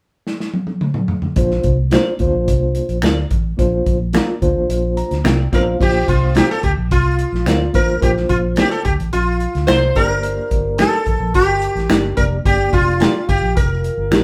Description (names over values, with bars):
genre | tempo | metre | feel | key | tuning
uptempo 1960s-style soul | 108 BPM | 4/4 | straight | Bb major | A4 = 440 Hz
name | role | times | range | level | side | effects
warm soul drum kit | drums | 0.3-14.2 s | crash cymbal, hi-hat, kick drum, snare drum, toms | -21 LUFS | equal | none
mellow reed electric piano | accompaniment | 1.4-13.2 s | Bb3 to Bb5 | -23 LUFS | equal | fast tremolo
vintage muted fingered electric bass | bass | 1.4-14.2 s | F1 to D2 | -22 LUFS | equal | none
clean electric guitar | stabs | 1.9-14.2 s | C4 to D5 | -23 LUFS | equal | phaser
finger snap | percussion | 1.9-14.2 s | none | -30 LUFS | equal | none
sitar | melody | 5.5-14.2 s | F4 to C5 | -21 LUFS | equal | none
room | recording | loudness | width
moderate studio reverb, RT60 0.6 s | band playing live in one room | -17 LUFS | mono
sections
0.0-1.4 A section; 1.4-5.8 B section; 5.8-14.2 C section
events
drum fill 0.3-1.4; reed electric piano fill 4.7-5.8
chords
0.0 N.C.; 1.4 Bbadd9; 10.0 Gm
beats
0.26 0.81 | 1.37 1.92 2.47 3.03 | 3.58 4.14 4.69 5.25 | 5.80 6.36 6.92 7.47 | 8.03 8.58 9.13 9.69 | 10.24 10.80 11.35 11.91 | 12.46 13.01 13.57 14.12